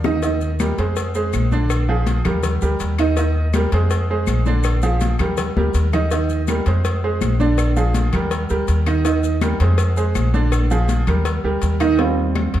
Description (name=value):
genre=latin, salsa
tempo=163 BPM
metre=4/4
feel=straight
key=Eb major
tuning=A4 = 444 Hz
part: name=upright bass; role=bass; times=0.0-12.6 s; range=Bb1 to F2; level=-19 LUFS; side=equal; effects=none
part: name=bongos and cowbell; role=percussion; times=0.0-12.6 s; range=none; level=-29 LUFS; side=left 6 dB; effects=none
part: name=claves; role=percussion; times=0.0-12.5 s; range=none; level=-36 LUFS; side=left 6 dB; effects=none
part: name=congas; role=percussion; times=0.0-12.6 s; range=none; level=-27 LUFS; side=left 3 dB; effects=none
part: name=maracas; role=percussion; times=0.0-12.0 s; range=none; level=-39 LUFS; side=left 8 dB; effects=none
part: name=bright upright piano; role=accompaniment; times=0.1-12.6 s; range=D3 to Eb5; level=-21 LUFS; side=right 4 dB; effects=none
room=moderate large studio reverb, RT60 1.3 s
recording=dark, warm production, faint mains hum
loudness=-16 LUFS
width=side -12 dB against mid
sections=0.2-12.0 A section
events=drum fill 0.0, 5.6-6.1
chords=0.2 Eb6; 1.0 Fm; 1.7 Bb7; 2.4 Eb; 3.9 Fm; 4.6 Bb7; 5.4 Eb; 6.8 Fm; 7.6 Bb7; 8.3 Eb6; 9.8 Fm; 10.5 Bb7; 11.3 Eb; 12.0 Eb6